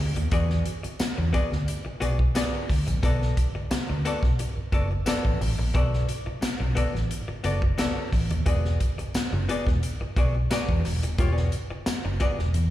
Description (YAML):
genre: funk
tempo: 88 BPM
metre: 4/4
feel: straight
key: unclear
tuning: A4 = 440 Hz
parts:
  - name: archtop guitar, miked and amplified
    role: accompaniment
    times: 0.0-12.4 s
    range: B3 to D5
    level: -31 LUFS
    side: left 3 dB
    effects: slapback echo
  - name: vintage muted fingered electric bass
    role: bass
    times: 0.0-12.7 s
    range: D#1 to E2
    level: -26 LUFS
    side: equal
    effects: tube saturation
  - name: swinging big-band drum kit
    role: drums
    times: 0.2-12.7 s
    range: hi-hat, kick drum, snare drum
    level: -26 LUFS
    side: equal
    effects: none
  - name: tambourine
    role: percussion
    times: 1.0-12.0 s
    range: none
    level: -44 LUFS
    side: left 2 dB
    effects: none
room: studio ambience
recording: live gig heard through the venue's PA, club reverb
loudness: -23 LUFS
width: side -14 dB against mid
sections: 0.0-12.7 A section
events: none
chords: 0.0 E9; 3.0 Bm7; 8.5 E9